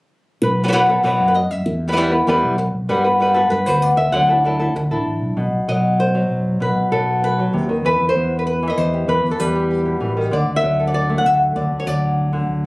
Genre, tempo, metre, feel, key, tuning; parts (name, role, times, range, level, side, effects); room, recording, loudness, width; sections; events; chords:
flamenco; 194 BPM; 4/4; straight; A4 = 440 Hz
flamenco guitar; melody; 0.4-12.7 s; B2 to F#5; -17 LUFS; equal
mellow fretless electric bass; bass; 0.4-12.7 s; A1 to G2; -21 LUFS; equal
little or no reverb; recorded on a phone in the room, club reverb, compression; -15 LUFS; side -22 dB against mid
0.4-5.4 A section; 5.4-12.7 B section
0.4 Bsus4; 1.7 Em; 2.9 Gmaj7; 4.1 Dadd9; 5.4 B5; 7.8 Em; 10.3 Dadd9